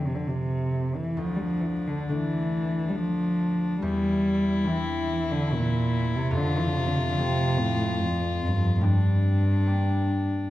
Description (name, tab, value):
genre	celtic folk, Celtic slow air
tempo	71 BPM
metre	3/4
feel	uneven beats, rubato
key	unclear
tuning	A4 = 439 Hz
part	dark cello	melody	0.0-10.5 s	F2 to G3	-24 LUFS	equal	slapback echo
part	concert harp	accompaniment	0.0-10.5 s	D2 to D4	-31 LUFS	equal	none
part	warm fiddle	second line	1.2-10.5 s	D4 to F4	-32 LUFS	left 4 dB	none
room	moderate recital hall reverb, RT60 1.6 s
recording	dark, warm production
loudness	-23 LUFS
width	side -15 dB against mid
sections	0.0-10.5 A section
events	none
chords	0.0 F; 1.2 Dm; 3.8 Cadd9/E; 6.3 F; 8.8 Gm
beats	0.27 | 1.18 2.08 2.96 | 3.81 4.65 5.49 | 6.32 7.15 7.99 | 8.83 9.69